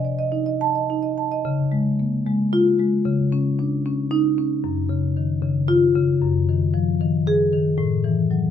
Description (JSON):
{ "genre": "classical, contemporary piece for solo marimba", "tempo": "76 BPM (dotted quarters)", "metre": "6/8", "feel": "rubato", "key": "unclear", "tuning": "A4 = 440 Hz", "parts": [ { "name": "marimba with medium mallets", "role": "solo", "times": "0.0-8.5 s", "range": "F#2 to A5", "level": "-18 LUFS", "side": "left 2 dB", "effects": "none" } ], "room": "light reverb", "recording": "none", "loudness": "-18 LUFS", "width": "side -9 dB against mid", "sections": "0.0-1.4 A section; 1.4-8.5 B section", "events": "none", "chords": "0.0 Cm6; 1.4 Db; 3.1 Dbsus2; 4.6 F#5; 6.2 Ab5/F#; 7.8 A5" }